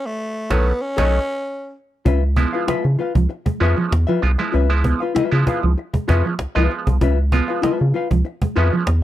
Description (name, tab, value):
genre	funk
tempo	97 BPM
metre	4/4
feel	straight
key	Db mixolydian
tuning	A4 = 439 Hz
part	growling tenor saxophone	melody	0.0-1.7 s	A3 to Db4	-23 LUFS	equal	none
part	vintage hollow-body jazz guitar	accompaniment	0.5-8.9 s	F4 to F5	-23 LUFS	left 6 dB	none
part	auto-wah clav	stabs	0.5-8.9 s	Eb3 to F4	-24 LUFS	right 5 dB	overdrive
part	rubbery square bass	bass	0.5-9.0 s	Cb2 to Db3	-17 LUFS	equal	none
part	cajon	drums	0.5-9.0 s	none	-23 LUFS	equal	none
part	mellow electric guitar	riff	2.1-8.8 s	F3 to Db4	-24 LUFS	right 3 dB	phaser
room	small room ambience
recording	dry, close 1970s-style studio recording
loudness	-16 LUFS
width	side -13 dB against mid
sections	0.0-2.1 A section; 2.1-9.0 B section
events	band accent 0.0-2.1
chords	0.0 Cb9; 2.1 Db7#9